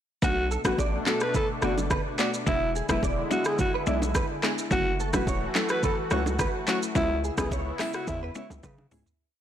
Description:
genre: afrobeats.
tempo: 107 BPM.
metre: 4/4.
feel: straight.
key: B dorian.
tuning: A4 = 440 Hz.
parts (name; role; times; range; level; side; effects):
breathy alto saxophone; melody; 0.2-8.5 s; E4 to B4; -30 LUFS; equal; tape echo.
mallet-like synth pluck; accompaniment; 0.2-9.1 s; F#3 to F#4; -33 LUFS; left 4 dB; chorus.
warm analog pad; sustained chords; 0.5-9.2 s; B2 to F#4; -35 LUFS; equal; chorus.
direct-recorded clean electric guitar; riff; 0.2-9.0 s; F#4 to D5; -35 LUFS; right 4 dB; ensemble chorus, tape echo.
hard-hitting 808-style bass; bass; 0.2-9.0 s; E1 to C#3; -31 LUFS; equal; none.
afro-pop drum kit; drums; 0.2-9.2 s; handclaps, hi-hat, kick drum, rim click, shaker, toms; -29 LUFS; equal; soft clipping on snare.
congas and bongos; percussion; 0.2-8.9 s; none; -35 LUFS; right 3 dB; none.
room: light reverb, digital ambience.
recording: blown-out, overdriven recording, overdrive.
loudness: -24 LUFS.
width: side -10 dB against mid.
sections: 0.2-9.2 chorus.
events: fade-out 7.0-9.2; drum fill 8.6-9.2.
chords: 0.2 Bm7; 2.5 E7; 4.7 F#m7; 7.0 C#m7.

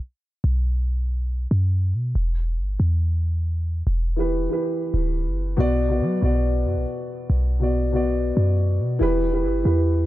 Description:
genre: hip hop, trap.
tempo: 140 BPM.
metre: 4/4.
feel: half-time.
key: B minor.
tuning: A4 = 442 Hz.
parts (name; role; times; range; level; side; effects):
clean 808-style bass; bass; 0.4-10.1 s; D1 to F#3; -21 LUFS; equal; none.
dark concert grand piano; accompaniment; 4.2-10.1 s; B2 to D5; -23 LUFS; equal; analog delay.
room: small room ambience.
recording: echo-heavy mix.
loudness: -20 LUFS.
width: side -15 dB against mid.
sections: 0.0-10.1 A section.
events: break 0.0-0.4.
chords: 0.0 B5; 2.2 Em; 5.6 Bm; 9.0 Em.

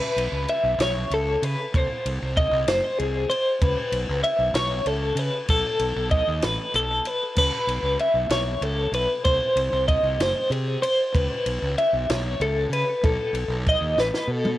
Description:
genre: math rock and midwest emo.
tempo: 64 BPM (dotted quarters).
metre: 6/8.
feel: straight.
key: unclear.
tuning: A4 = 441 Hz.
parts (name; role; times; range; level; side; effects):
twangy electric guitar; accompaniment; 0.0-1.7 s; E3; -49 LUFS; right 9 dB; none.
twelve-string electric guitar; arpeggios; 0.0-14.6 s; G#4 to E5; -23 LUFS; left 1 dB; tremolo, tape echo.
fuzz fingered electric bass; bass; 0.2-14.5 s; F#1 to C#3; -28 LUFS; right 1 dB; overdrive.
compact cocktail drum kit; drums; 0.2-14.6 s; crash cymbal, kick drum, ride cymbal, snare drum, toms; -28 LUFS; equal; none.
room: light reverb, small room ambience.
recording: home recording on cassette.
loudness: -21 LUFS.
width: side -15 dB against mid.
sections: 0.0-14.6 A section.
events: drum fill 14.0-14.6.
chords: 0.0 C#m7; 1.7 G#/B#; 3.6 C#m7; 5.5 B7; 7.4 C#m7; 9.3 G#/B#; 11.1 C#m7; 13.0 B7.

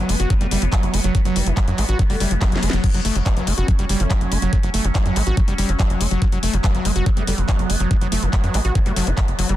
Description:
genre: psychedelic trance.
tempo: 142 BPM.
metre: 4/4.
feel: straight.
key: F# phrygian.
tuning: A4 = 438 Hz.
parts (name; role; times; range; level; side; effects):
formant-sweep wobble bass; second line; 0.0-9.2 s; E3 to B3; -38 LUFS; left 4 dB; none.
overtone-sweeping drone; sustained chords; 0.0-9.6 s; F#3 to C#4; -28 LUFS; right 1 dB; chorus, built-in reverb, phaser, sidechain pumping.
overdriven acid bass; riff; 0.0-9.6 s; E3 to G4; -25 LUFS; moving between left 6 dB and right 6 dB; distortion, auto-pan, sidechain pumping, dub echo.
tight sequencer bass; bass; 0.0-9.6 s; F#1 to F#2; -21 LUFS; equal; none.
drum and bass drum kit; drums; 0.1-9.6 s; crash cymbal, handclaps, hi-hat, snare drum; -26 LUFS; left 1 dB; none.
electronic kick drum; drums; 0.3-9.3 s; none; -18 LUFS; equal; none.
room: digital ambience.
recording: dense, heavily limited modern master.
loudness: -17 LUFS.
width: side -14 dB against mid.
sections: 0.0-9.6 A section.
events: drum fill 2.4-2.8.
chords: 0.0 F#5.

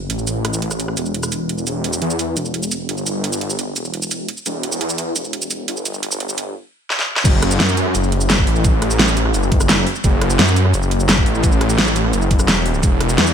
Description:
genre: dark technical drum and bass.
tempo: 172 BPM.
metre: 4/4.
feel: straight.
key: F# phrygian.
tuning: A4 = 441 Hz.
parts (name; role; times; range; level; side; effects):
wide detuned saw bass; bass; 0.0-13.3 s; E1 to F#2; -18 LUFS; equal; chorus, tube saturation, sidechain pumping.
dubstep drum kit; drums; 0.1-13.3 s; cabasa, crash cymbal, hi-hat, rim click, snare drum; -19 LUFS; right 1 dB; high-pass filter on snare, high-pass filter on hats, high-pass filter on perc, high-pass filter on cymbals.
electronic kick drum; drums; 7.2-12.9 s; none; -16 LUFS; equal; none.
room: digital ambience.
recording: high-pass filter.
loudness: -15 LUFS.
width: side -8 dB against mid.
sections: 0.0-7.2 A section; 7.2-13.3 B section.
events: build-up 0.0-7.2; filter sweep 0.0-7.2; drum fill 6.9-7.2; drop 7.2-13.3.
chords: none.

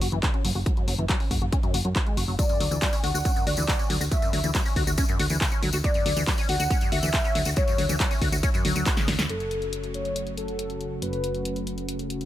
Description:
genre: uplifting trance.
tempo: 139 BPM.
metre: 4/4.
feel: straight.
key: F# minor.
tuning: A4 = 440 Hz.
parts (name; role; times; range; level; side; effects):
liquid acid bass; arpeggios; 0.0-9.2 s; F#2 to F#4; -31 LUFS; left 2 dB; analog chorus, sidechain pumping, ping-pong delay.
solid FM bass; bass; 0.0-12.3 s; F#1 to F#2; -29 LUFS; equal; sidechain pumping.
punchy analog drum machine; drums; 0.0-12.3 s; handclaps, hi-hat, snare drum; -31 LUFS; equal; none.
electronic kick drum; drums; 0.2-8.9 s; none; -25 LUFS; equal; none.
warm velvety synth lead; second line; 2.4-11.6 s; A4 to F#5; -31 LUFS; left 1 dB; chorus, ping-pong delay.
tambourine; percussion; 2.4-9.3 s; none; -35 LUFS; left 2 dB; none.
lush unison pad; sustained chords; 9.3-12.3 s; C#3 to F#4; -33 LUFS; equal; chorus, sidechain pumping.
room: little or no reverb.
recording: none.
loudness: -22 LUFS.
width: side -13 dB against mid.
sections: 0.0-9.3 A section; 9.3-12.3 B section.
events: filter sweep on acid bass 0.0-9.3; drum fill 9.0-9.3.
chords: 0.0 F#5; 2.4 N.C.; 9.3 F#m.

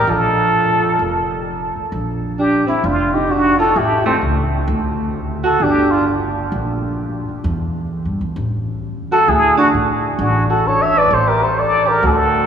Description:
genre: jazz, small-group swing and bop.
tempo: 130 BPM.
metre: 4/4.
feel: swing 65% on 8ths.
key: Bb major.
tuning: A4 = 439 Hz.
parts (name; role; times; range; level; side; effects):
trumpet with plunger mute; melody; 0.0-6.1, 9.1-12.5 s; B#3 to E5; -16 LUFS; left 1 dB; none.
breathy alto saxophone; second line; 0.0-6.1, 9.1-12.5 s; A3 to Db5; -20 LUFS; right 3 dB; none.
upright bass; bass; 0.0-12.5 s; F1 to A2; -21 LUFS; equal; none.
room: wet cathedral reverb, RT60 5.3 s.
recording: recorded in a church or concert hall, small room ambience.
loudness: -14 LUFS.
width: side -8 dB against mid.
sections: 0.0-1.9 A section; 1.9-12.5 B section.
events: none.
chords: 0.0 Bb5; 3.8 A7; 4.7 N.C.; 5.6 Gm; 7.4 Em; 8.4 N.C.; 9.3 D5; 11.1 Bbmaj13/A.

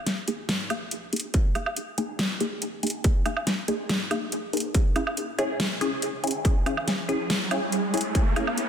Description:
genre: deep dubstep.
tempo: 141 BPM.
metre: 4/4.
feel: half-time.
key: unclear.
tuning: A4 = 438 Hz.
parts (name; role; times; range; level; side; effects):
soft dub sub bass; bass; 0.0-8.3 s; D#1 to G#2; -53 LUFS; equal; none.
dubstep drum kit; drums; 0.1-8.7 s; hi-hat, snare drum, woodblock; -28 LUFS; equal; small room ambience.
filtered dub chord stab; stabs; 0.3-8.5 s; A#3 to G#4; -29 LUFS; left 1 dB; phaser, dub echo.
electronic kick drum; drums; 1.3-8.2 s; none; -22 LUFS; equal; distortion, small room ambience.
riser; sound effects; 6.7-8.7 s; none; -31 LUFS; right 2 dB; none.
room: moderate lush hall reverb, RT60 1.9 s.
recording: dense, heavily limited modern master.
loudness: -24 LUFS.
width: side -8 dB against mid.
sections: 0.0-8.7 A section.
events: build-up 0.0-8.7; filter sweep on synth stab 0.0-8.7; riser 6.7-8.7.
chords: 0.0 G#sus2; 4.7 C#m.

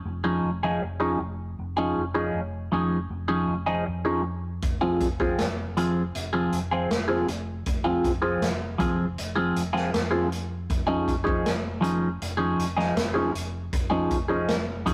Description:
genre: psychedelic rock.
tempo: 79 BPM.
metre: 4/4.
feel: straight.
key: unclear.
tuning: A4 = 440 Hz.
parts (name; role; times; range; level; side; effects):
fingered electric bass; bass; 0.1-14.9 s; F1 to F2; -36 LUFS; equal; none.
semi-hollow electric guitar; riff; 0.2-14.9 s; F3 to Ab4; -27 LUFS; equal; phaser.
vintage drum kit; drums; 4.6-14.9 s; hi-hat, kick drum, snare drum; -32 LUFS; equal; none.
room: moderate stone room reverb, RT60 1.3 s.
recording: rough rehearsal-room recording, warm saturation.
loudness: -26 LUFS.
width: mono.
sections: 0.0-14.9 A section.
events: none.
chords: 0.0 Dbadd9/F; 4.6 Fm; 10.7 Dbadd9/F.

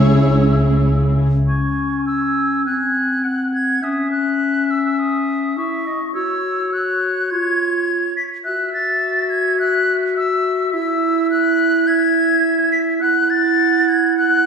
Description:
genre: classical, dramatic, fast romantic movement for symphony orchestra.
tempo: 104 BPM.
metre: 4/4.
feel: rubato.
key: C# minor.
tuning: A4 = 440 Hz.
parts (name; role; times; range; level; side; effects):
warm symphonic violin section; melody; 0.0-0.9 s; C#5; -27 LUFS; left 3 dB; none.
hollow concert flute; second line; 0.0-14.5 s; C#6 to B6; -20 LUFS; left 2 dB; none.
warm clarinet; second line; 0.0-14.5 s; B#3 to G#4; -19 LUFS; right 1 dB; none.
warm symphonic violin section; second line; 0.0-1.2 s; E4 to G#4; -27 LUFS; equal; none.
warm symphonic viola section; accompaniment; 0.0-1.2 s; G#3 to C#4; -20 LUFS; right 1 dB; none.
warm symphonic cello section; bass; 0.0-1.2 s; C#3; -17 LUFS; equal; none.
warm symphonic double bass section; bass; 0.0-1.2 s; C#2; -19 LUFS; equal; none.
clear oboe; second line; 1.5-14.5 s; C#5 to G#5; -25 LUFS; right 1 dB; none.
room: wet scoring stage reverb, RT60 1.5 s.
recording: heard from further back in the room.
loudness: -15 LUFS.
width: side -6 dB against mid.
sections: 0.0-1.5 A section; 1.5-14.5 B section.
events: none.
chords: 0.0 C#m; 2.7 G#7/B#; 3.8 C#m; 6.2 F#5; 7.3 C#/E#; 8.5 F#m7; 10.7 N.C.; 13.0 F#m7/E.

